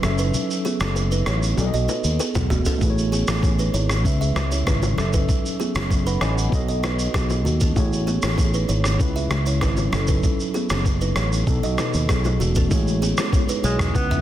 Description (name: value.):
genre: afrobeats.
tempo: 97 BPM.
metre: 4/4.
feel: straight.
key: unclear.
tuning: A4 = 440 Hz.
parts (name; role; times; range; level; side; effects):
mellow tine electric piano; accompaniment; 0.0-14.2 s; B2 to B5; -27 LUFS; left 1 dB; medium stereo tremolo.
kalimba; riff; 0.0-14.2 s; A3 to E5; -28 LUFS; right 6 dB; none.
fingered electric bass; bass; 0.0-14.2 s; E1 to D#2; -22 LUFS; equal; none.
lo-fi sampler-style drum kit; drums; 0.0-14.2 s; kick drum, rim click, shaker, toms; -23 LUFS; equal; soft clipping on snare.
congas and bongos; percussion; 0.0-14.1 s; none; -32 LUFS; left 5 dB; none.
breathy alto saxophone; melody; 13.6-14.2 s; G#3 to B3; -25 LUFS; right 1 dB; none.
room: little or no reverb.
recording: dense, heavily limited modern master, faint mains hum.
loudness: -19 LUFS.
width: side -12 dB against mid.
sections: 0.0-12.7 A section; 12.7-14.2 B section.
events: break 0.0-2.8; drum fill 1.6-2.8.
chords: 0.0 F#m7; 1.6 B7; 2.8 Amaj7; 4.0 C#m7; 5.0 F#m7; 6.5 B7; 7.8 Amaj7; 9.0 C#m7; 9.9 F#m7; 11.5 B7; 12.7 Amaj7.